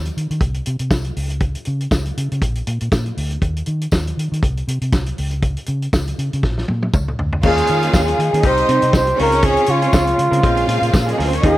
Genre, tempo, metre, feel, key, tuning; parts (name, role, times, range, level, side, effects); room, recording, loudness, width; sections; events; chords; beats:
disco; 120 BPM; 4/4; swing 56% on 16ths; Bb dorian; A4 = 438 Hz
vintage muted fingered electric bass; bass; 0.0-11.6 s; Bb1 to Eb3; -21 LUFS; equal
warm soul drum kit; drums; 0.1-11.6 s; crash cymbal, hi-hat, kick drum, snare drum, toms; -20 LUFS; equal
tambourine; percussion; 0.9-11.1 s; -35 LUFS; left 3 dB
rich studio violin section; second line; 7.4-11.6 s; Ab3 to F5; -21 LUFS; equal
clear grand piano; accompaniment; 7.4-11.6 s; G3 to G4; -25 LUFS; left 6 dB
electric guitar through a small old amp; accompaniment; 7.4-11.6 s; Bb3 to Bb4; -25 LUFS; right 6 dB
clear studio string section; sustained chords; 7.4-11.6 s; C3 to Ab4; -28 LUFS; left 1 dB
breathy flugelhorn; melody; 7.5-11.6 s; F4 to C5; -17 LUFS; right 1 dB
little or no reverb; -15 LUFS; side -16 dB against mid
0.0-7.4 A section; 7.4-11.6 B section
drum fill 6.4-7.4
0.0 N.C.; 2.4 Bb; 3.4 N.C.; 6.4 Bbm; 7.4 Eb7sus4; 8.4 Cm; 9.2 Dbmaj7; 10.4 Bbm7
0.41 0.91 | 1.42 1.92 2.42 2.92 | 3.42 3.93 4.43 4.93 | 5.43 5.93 6.43 6.93 | 7.43 7.93 8.43 8.93 | 9.43 9.93 10.43 10.93 | 11.43